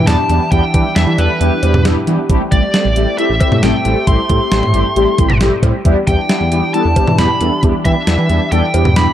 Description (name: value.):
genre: synth-pop.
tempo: 135 BPM.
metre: 4/4.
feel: straight.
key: A minor.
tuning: A4 = 440 Hz.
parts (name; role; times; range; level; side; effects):
high-gain lead guitar; melody; 0.0-9.1 s; B4 to C6; -18 LUFS; equal; distortion, dub echo.
sweeping resonant pad; sustained chords; 0.0-9.1 s; E3 to G4; -22 LUFS; left 1 dB; chorus, phaser.
smooth synth bass; bass; 0.0-9.1 s; A1 to E3; -15 LUFS; equal; none.
mellow synth brass; accompaniment; 0.1-9.1 s; G3 to A4; -18 LUFS; equal; chorus, phaser.
clean 12-bit digital drum machine; drums; 0.1-9.1 s; cowbell, hi-hat, kick drum, snare drum, toms; -16 LUFS; equal; none.
room: light reverb.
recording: echo-heavy mix.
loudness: -11 LUFS.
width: side -11 dB against mid.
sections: 0.0-9.1 A section.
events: none.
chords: 0.0 Em7; 2.3 Am7; 5.9 Em7.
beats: 0.07 | 0.52 0.96 1.41 1.85 | 2.29 2.74 3.18 3.63 | 4.07 4.52 4.96 5.41 | 5.85 6.29 6.74 7.18 | 7.63 8.07 8.52 8.96.